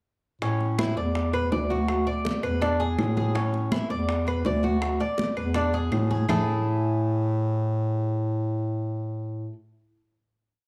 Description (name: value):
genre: latin, Cuban son and guajira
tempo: 164 BPM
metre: 4/4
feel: straight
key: A major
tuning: A4 = 440 Hz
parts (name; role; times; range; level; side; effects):
- Cuban tres; arpeggios; 0.4-9.5 s; A3 to D5; -32 LUFS; equal; none
- mellow bass clarinet; bass; 0.4-9.5 s; D2 to A2; -28 LUFS; equal; none
- bongos; percussion; 0.4-6.4 s; none; -38 LUFS; equal; none
- congas; percussion; 0.4-6.4 s; none; -33 LUFS; equal; none
- claves; percussion; 0.8-6.4 s; none; -42 LUFS; equal; none
room: light reverb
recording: dark, warm production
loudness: -26 LUFS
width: mono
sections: 0.4-6.3 montuno (vamp); 6.3-9.2 final chord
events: none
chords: 0.4 A; 1.2 Esus2; 2.6 E7; 3.4 A; 4.1 Esus2; 5.6 E7; 6.3 A5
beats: | 0.42 0.79 1.16 1.52 | 1.89 2.25 2.62 2.99 | 3.35 3.72 4.09 4.46 | 4.82 5.19 5.56 5.92 | 6.29 6.66 7.03 7.39 | 7.76 8.13 8.50 8.86